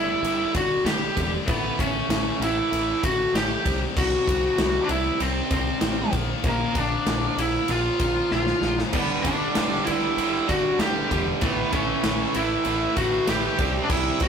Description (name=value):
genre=hard rock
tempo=97 BPM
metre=4/4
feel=straight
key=unclear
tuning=A4 = 441 Hz
part: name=lead guitar through a small cranked amp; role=melody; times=0.0-14.3 s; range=Bb3 to G4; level=-25 LUFS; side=equal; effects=overdrive
part: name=octave-fuzz lead guitar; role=second line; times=0.0-14.3 s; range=Bb4 to G5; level=-32 LUFS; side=right 2 dB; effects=distortion
part: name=heavy high-gain guitar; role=riff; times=0.0-14.3 s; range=G2 to C4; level=-31 LUFS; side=left 7 dB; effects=distortion
part: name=growling fingered electric bass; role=bass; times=0.0-14.3 s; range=E1 to C2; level=-30 LUFS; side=equal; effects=overdrive
part: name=big rock drum kit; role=drums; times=0.2-14.3 s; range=crash cymbal, kick drum, ride cymbal, snare drum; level=-27 LUFS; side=equal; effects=none
part: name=tight distorted guitar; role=riff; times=8.9-14.3 s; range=G2 to C4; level=-28 LUFS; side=right 7 dB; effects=distortion
room=light reverb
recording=rough rehearsal-room recording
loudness=-21 LUFS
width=side -7 dB against mid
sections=0.0-14.3 A section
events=drum fill 8.3-8.9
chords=0.0 G5; 1.5 A; 3.7 C5; 6.1 Bb; 8.9 G5; 11.4 A; 13.6 C5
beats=0.24 0.86 | 1.48 2.10 2.72 3.34 | 3.96 4.58 5.21 5.83 | 6.45 7.07 7.69 8.31 | 8.93 9.55 10.18 10.80 | 11.42 12.04 12.66 13.28 | 13.90